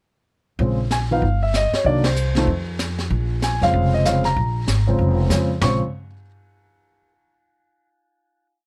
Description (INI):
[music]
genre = jazz piano trio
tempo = 191 BPM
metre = 4/4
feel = swing 61% on 8ths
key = Bb minor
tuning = A4 = 440 Hz
[part]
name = warm concert grand piano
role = melody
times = 0.6-5.8 s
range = Db3 to Db6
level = -23 LUFS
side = equal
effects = none
[part]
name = upright bass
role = bass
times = 0.6-5.8 s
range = F1 to F2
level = -23 LUFS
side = equal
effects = none
[part]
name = jazz brush drum kit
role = drums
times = 0.6-5.9 s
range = brushed snare drum, hi-hat, kick drum, ride cymbal, snare drum, toms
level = -29 LUFS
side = equal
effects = none
[sound]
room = little or no reverb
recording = none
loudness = -20 LUFS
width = mono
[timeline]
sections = 0.6-5.6 A section; 5.6-6.9 final chord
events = band accent 2.0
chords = 0.6 Bbm7; 1.2 Ebadd9/G; 1.9 Cm7b5; 2.5 N.C.; 3.1 Bbm7; 5.6 Bbm